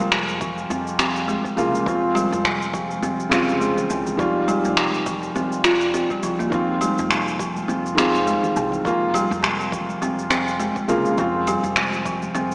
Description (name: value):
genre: organic downtempo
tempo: 103 BPM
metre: 4/4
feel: swing 57% on 16ths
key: unclear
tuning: A4 = 440 Hz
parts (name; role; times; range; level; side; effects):
- felt-muted upright piano; accompaniment; 0.0-12.5 s; Db3 to F4; -23 LUFS; equal; sidechain pumping, tape echo
- kalimba; arpeggios; 0.0-12.5 s; C3 to F4; -23 LUFS; equal; tape echo
- upright bass; bass; 0.0-12.5 s; C2 to F2; -34 LUFS; equal; none
- electronic cabasa and finger snaps; drums; 0.0-12.5 s; none; -24 LUFS; equal; overdrive, slapback echo
- electronic kick drum; drums; 0.4-12.2 s; none; -32 LUFS; equal; overdrive
- congas; percussion; 0.4-12.3 s; none; -36 LUFS; equal; none
room: wet lush hall reverb, RT60 2.4 s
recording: big arena sound, small speaker sound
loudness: -18 LUFS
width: side -29 dB against mid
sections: 0.0-12.5 A section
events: none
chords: 0.0 Bbm7/F; 1.9 Dbmaj7/F; 4.2 Ebadd9/F; 6.5 Fm7; 8.9 Bbm7/F; 11.2 Dbmaj7/F (rootless)